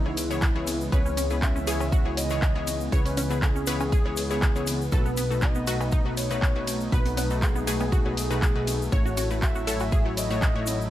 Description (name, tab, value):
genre	progressive house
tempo	120 BPM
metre	4/4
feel	straight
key	C# minor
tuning	A4 = 440 Hz
part	soft octave-layered synth lead	melody	0.0-10.8 s	E4 to E5	-32 LUFS	left 1 dB	chorus, phaser, digital delay
part	warm analog pad	sustained chords	0.0-10.9 s	C#3 to E4	-34 LUFS	equal	chorus, sidechain pumping
part	wide unison pluck	arpeggios	0.0-10.8 s	B3 to C#5	-34 LUFS	right 2 dB	sidechain pumping, digital delay
part	plucky analog bass	bass	0.0-10.9 s	A1 to C#2	-31 LUFS	equal	sidechain pumping
part	wide unison pluck	stabs	0.1-10.9 s	A2 to C#5	-32 LUFS	left 3 dB	sidechain pumping, digital delay
part	bongos, congas and cowbell	percussion	0.1-10.8 s	none	-40 LUFS	left 3 dB	none
part	house drum kit	drums	0.2-10.8 s	handclaps, hi-hat, ride cymbal	-34 LUFS	equal	studio reverb
part	tube shaker	percussion	0.2-10.9 s	none	-38 LUFS	left 4 dB	none
part	electronic kick drum	drums	0.4-10.5 s	none	-23 LUFS	equal	studio reverb
room	digital ambience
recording	none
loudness	-22 LUFS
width	side -13 dB against mid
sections	0.0-10.9 A section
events	none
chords	0.0 C#m7; 4.9 B7; 8.9 F#m7/A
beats	0.42 | 0.92 1.42 1.92 2.42 | 2.92 3.42 3.92 4.42 | 4.92 5.42 5.92 6.42 | 6.92 7.42 7.92 8.42 | 8.92 9.42 9.92 10.42